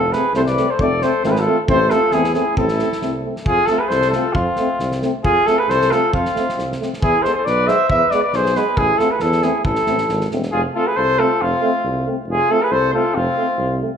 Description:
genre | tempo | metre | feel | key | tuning
balkan folk, Balkan brass band | 136 BPM | 2/4 | swing 54% on 16ths | unclear | A4 = 439 Hz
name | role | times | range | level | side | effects
warm cornet | melody | 0.0-13.8 s | F4 to E5 | -18 LUFS | equal | none
warm flugelhorn | second line | 0.0-13.8 s | C4 to C5 | -25 LUFS | left 3 dB | none
mellow tuba | bass | 0.0-13.8 s | E1 to F2 | -23 LUFS | equal | none
warm euphonium | accompaniment | 0.1-13.9 s | G#3 to A3 | -25 LUFS | right 6 dB | none
loose indie drum kit | percussion | 0.1-10.5 s | kick drum, snare drum | -26 LUFS | equal | none
clear euphonium | accompaniment | 0.2-13.9 s | B3 to C4 | -27 LUFS | left 8 dB | none
room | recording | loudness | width
moderate recital hall reverb, RT60 1.4 s | minimal, uncompressed stereo recording | -15 LUFS | side -7 dB against mid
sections
0.0-3.5 A section; 3.5-10.5 B section; 10.5-14.0 B section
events
none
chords
0.0 F; 1.7 Am; 3.5 F; 7.0 E; 8.8 Am; 10.5 F

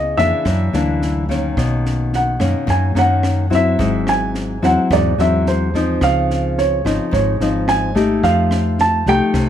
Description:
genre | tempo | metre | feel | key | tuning
bossa nova | 108 BPM | 4/4 | straight | unclear | A4 = 439 Hz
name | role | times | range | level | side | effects
dark baby grand piano | melody | 0.0-9.5 s | C5 to A5 | -19 LUFS | right 2 dB | none
nylon-string guitar | accompaniment | 0.0-9.5 s | Gb2 to Ab4 | -18 LUFS | left 3 dB | none
hollow-body short-scale fingered electric bass | bass | 0.0-9.5 s | Ab1 to Gb2 | -20 LUFS | equal | none
compact cocktail drum kit | drums | 0.2-9.5 s | kick drum, rim click, snare drum | -26 LUFS | equal | none
room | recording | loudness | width
light reverb | none | -14 LUFS | side -10 dB against mid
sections
0.0-9.5 A section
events
none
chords
0.5 Gb7b13; 1.6 Bmaj9; 3.8 Ab7b13; 6.0 Dbmaj9; 8.2 F9

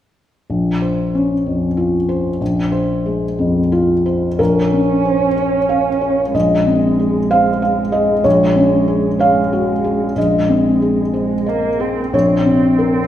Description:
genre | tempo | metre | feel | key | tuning
neoclassical piano and strings | 62 BPM (dotted quarters) | 6/8 | rubato | Bb minor | A4 = 440 Hz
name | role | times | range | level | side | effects
felt-muted upright piano | accompaniment | 0.5-13.1 s | Bb1 to F5 | -14 LUFS | left 1 dB | none
muted cello | second line | 4.4-13.1 s | Ab3 to Db4 | -20 LUFS | right 6 dB | none
room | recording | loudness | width
wet recital hall reverb, RT60 1.6 s | recorded in a church or concert hall | -13 LUFS | side -11 dB against mid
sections
0.5-4.4 A section; 4.4-13.1 B section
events
none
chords
0.5 Bbmadd9; 2.4 Fm/Bb; 4.4 Bbmadd9; 6.3 Fm/Bb; 8.2 Gbadd9/Bb; 10.2 Ab/Bb; 12.1 Bbmadd9

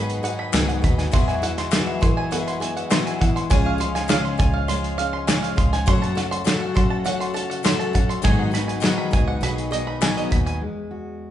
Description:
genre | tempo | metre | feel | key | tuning
indie folk with a building arrangement | 101 BPM | 4/4 | straight | E major | A4 = 440 Hz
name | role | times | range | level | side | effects
felt-muted upright piano | accompaniment | 0.0-10.6 s | F#1 to G#5 | -32 LUFS | right 4 dB | none
picked twelve-string acoustic guitar | accompaniment | 0.0-10.6 s | G#2 to A4 | -26 LUFS | left 5 dB | none
pedal harmonium | sustained chords | 0.0-10.6 s | C#3 to F#4 | -32 LUFS | left 1 dB | none
bluegrass banjo | arpeggios | 0.0-10.6 s | D#5 to C6 | -28 LUFS | right 3 dB | none
fingered electric bass | bass | 0.0-10.6 s | B1 to F#3 | -27 LUFS | equal | none
natural country drum kit | drums | 0.1-10.6 s | hi-hat, kick drum, snare drum | -22 LUFS | equal | none
group handclap | percussion | 0.5-10.2 s | none | -31 LUFS | left 5 dB | none
fingerpicked steel-string acoustic guitar | accompaniment | 10.6-11.3 s | E2 to F#4 | -31 LUFS | left 2 dB | none
room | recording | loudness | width
moderate large studio reverb, RT60 1.4 s | band playing live in one room, nothing above 10.6 kHz | -19 LUFS | side -11 dB against mid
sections
0.0-10.6 A section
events
felt piano fill 5.0-5.9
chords
0.0 G#m7; 1.1 Eadd9; 3.5 C#; 5.9 F#m; 8.2 G#m7; 9.4 B6; 10.6 Eadd9

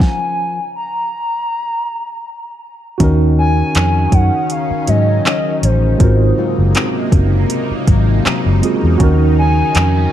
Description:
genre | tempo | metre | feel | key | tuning
contemporary R&B | 80 BPM | 4/4 | swing 54% on 16ths | Eb dorian from 3.0 s | A4 = 441 Hz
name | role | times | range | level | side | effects
hollow clarinet-like synth lead | melody | 0.0-10.1 s | C5 to Bb5 | -20 LUFS | equal | chorus, digital delay
tine electric piano | accompaniment | 0.0-10.1 s | Ab3 to Bb4 | -20 LUFS | right 5 dB | medium stereo tremolo
nylon-string guitar | arpeggios | 0.0-10.1 s | Ab2 to F4 | -22 LUFS | left 7 dB | none
smooth R&B drum kit | drums | 0.0-9.9 s | handclaps, hi-hat, kick drum, snare drum | -15 LUFS | equal | overdrive
lush unison pad | sustained chords | 3.3-10.1 s | C3 to Eb4 | -23 LUFS | equal | chorus, phaser
vintage muted fingered electric bass | bass | 3.0-10.1 s | Gb1 to Ab2 | -13 LUFS | equal | none
room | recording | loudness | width
light reverb, digital ambience | dark, warm production | -12 LUFS | side -11 dB against mid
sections
0.0-3.0 A section; 3.0-10.1 B section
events
stop 0.0-3.0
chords
0.0 N.C.; 3.0 Ebm7; 6.0 Ab13; 9.0 Ebm9

